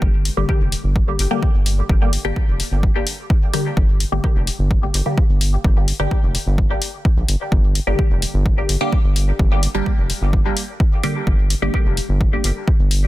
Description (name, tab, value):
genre	dub techno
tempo	128 BPM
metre	4/4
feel	straight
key	G minor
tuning	A4 = 440 Hz
part	round analog bass	bass	0.0-13.1 s	F1 to Bb1	-19 LUFS	equal	tube saturation, sidechain pumping
part	electronic kick drum	drums	0.0-12.8 s	none	-18 LUFS	equal	overdrive
part	electronic hi-hat	drums	0.3-13.0 s	none	-24 LUFS	left 3 dB	overdrive, low-pass filter on hats, low-pass filter on snare
part	filtered dub chord stab	stabs	0.4-12.5 s	D3 to G4	-24 LUFS	left 1 dB	phaser, sidechain pumping, dub echo
room	little or no reverb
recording	dense, heavily limited modern master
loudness	-16 LUFS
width	side -16 dB against mid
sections	0.0-13.1 A section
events	none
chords	0.0 Gm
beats	| 0.02 0.49 0.96 1.43 | 1.90 2.36 2.83 3.30 | 3.77 4.24 4.71 5.18 | 5.64 6.11 6.58 7.05 | 7.52 7.99 8.46 8.93 | 9.39 9.86 10.33 10.80 | 11.27 11.74 12.21 12.68